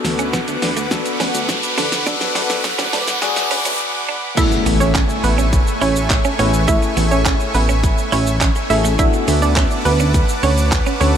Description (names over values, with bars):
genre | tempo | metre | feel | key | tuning
dance-pop | 104 BPM | 4/4 | straight | A major | A4 = 440 Hz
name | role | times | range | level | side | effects
bell-like tine electric piano | accompaniment | 0.0-11.2 s | A3 to B4 | -24 LUFS | left 5 dB | lush chorus, sidechain pumping
supersaw pad | sustained chords | 0.0-11.2 s | A3 to D6 | -24 LUFS | right 2 dB | sidechain pumping
clean electric guitar | riff | 0.0-11.1 s | A3 to E4 | -26 LUFS | right 8 dB | analog chorus
chorused synth bass | bass | 0.0-11.2 s | A1 to D3 | -19 LUFS | equal | sidechain pumping
pop drum kit | drums | 0.0-11.1 s | crash cymbal, handclaps, hi-hat, kick drum, shaker, snare drum | -20 LUFS | equal | none
riser and impact | sound effects | 0.0-6.7 s | none | -23 LUFS | equal | none
hollow square pluck | melody | 4.4-11.1 s | B3 to E5 | -20 LUFS | right 3 dB | chorus, analog delay
room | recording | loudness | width
moderate huge ambient reverb, RT60 7.4 s | dreamy mix soaked in reverb, high-pass filter | -14 LUFS | side -8 dB against mid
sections
0.0-4.4 A section; 4.4-11.2 B section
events
build-up 0.0-4.4; drum fill 0.0-3.8; riser 0.0-4.4; filter sweep 0.0-4.4; break 3.8-4.4; drop 4.4-11.2; impact 4.4-6.7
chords
0.0 D6; 4.4 Amaj7; 9.0 D6